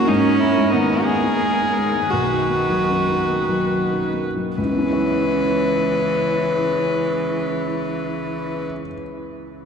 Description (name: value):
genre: neoclassical piano and strings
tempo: 67-96 BPM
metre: 3/4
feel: rubato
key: C# dorian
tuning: A4 = 440 Hz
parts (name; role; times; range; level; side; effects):
- warm violin; melody; 0.0-8.7 s; D#4 to B4; -22 LUFS; left 2 dB; none
- rich cello; second line; 0.0-8.7 s; C#3 to C#4; -24 LUFS; right 3 dB; none
- felt-muted upright piano; accompaniment; 0.0-9.7 s; B1 to C#5; -24 LUFS; left 2 dB; none
- warm viola; accompaniment; 0.0-8.7 s; E3 to B4; -28 LUFS; right 2 dB; none
room: wet cathedral reverb, RT60 5.4 s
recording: in a vast, echoing space, nothing above 10.4 kHz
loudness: -18 LUFS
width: side -6 dB against mid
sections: 0.0-4.6 A section; 4.6-9.7 B section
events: slowing down 0.0-4.6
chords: 0.1 G#madd9; 2.1 Bmaj7; 4.6 C#m7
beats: | 0.09 0.72 1.39 | 2.11 2.88 3.70 | 4.57 5.47 6.37 | 7.26 8.15 9.04